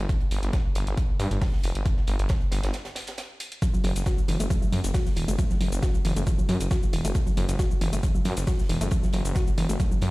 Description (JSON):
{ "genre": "driving peak-time techno", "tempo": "136 BPM", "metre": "4/4", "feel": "straight", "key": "F# minor", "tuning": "A4 = 440 Hz", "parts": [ { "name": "detuned saw bass", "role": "bass", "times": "0.0-10.1 s", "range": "E1 to G2", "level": "-26 LUFS", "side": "equal", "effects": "sidechain pumping" }, { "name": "deep reggae drum kit", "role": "drums", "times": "0.1-10.1 s", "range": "hi-hat, snare drum", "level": "-42 LUFS", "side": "right 2 dB", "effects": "high-pass filter on hats, high-pass filter on snare, high-pass filter on room" }, { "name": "electronic hi-hat and shaker", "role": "drums", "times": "0.1-10.1 s", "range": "none", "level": "-37 LUFS", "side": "left 1 dB", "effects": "overdrive" }, { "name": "electronic kick drum", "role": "drums", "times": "0.1-9.9 s", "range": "none", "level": "-24 LUFS", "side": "equal", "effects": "overdrive" }, { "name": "warbly dusty pluck", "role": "riff", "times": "3.6-10.1 s", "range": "E3 to F#4", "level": "-30 LUFS", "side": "equal", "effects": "chorus, tube saturation, cassette tape, sidechain pumping, ping-pong delay" } ], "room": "little or no reverb", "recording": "played on a big sound system in a bare room, stone room reverb", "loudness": "-23 LUFS", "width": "side -21 dB against mid", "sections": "0.0-10.1 A section", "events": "break 2.7-3.6", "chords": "none" }